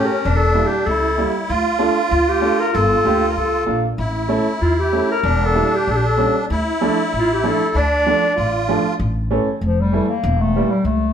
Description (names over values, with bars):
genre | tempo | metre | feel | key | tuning
klezmer | 96 BPM | 2/4 | straight | D harmonic minor | A4 = 436 Hz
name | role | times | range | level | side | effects
warm clarinet | melody | 0.0-11.1 s | F3 to D5 | -19 LUFS | left 1 dB | none
musette accordion | second line | 0.0-8.9 s | C#4 to F4 | -21 LUFS | right 1 dB | none
clear upright piano | accompaniment | 0.0-10.7 s | E3 to G4 | -22 LUFS | right 3 dB | none
upright bass | bass | 0.3-11.1 s | E1 to E2 | -21 LUFS | left 1 dB | none
room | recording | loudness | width
wet stone room reverb, RT60 0.9 s | band playing live in one room | -15 LUFS | side -8 dB against mid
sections
0.0-9.0 A section; 9.0-11.1 A section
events
none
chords
0.2 Edim; 1.5 Dm; 2.7 Gm; 4.0 A; 5.3 Edim; 6.5 Dm; 9.0 A; 10.2 Edim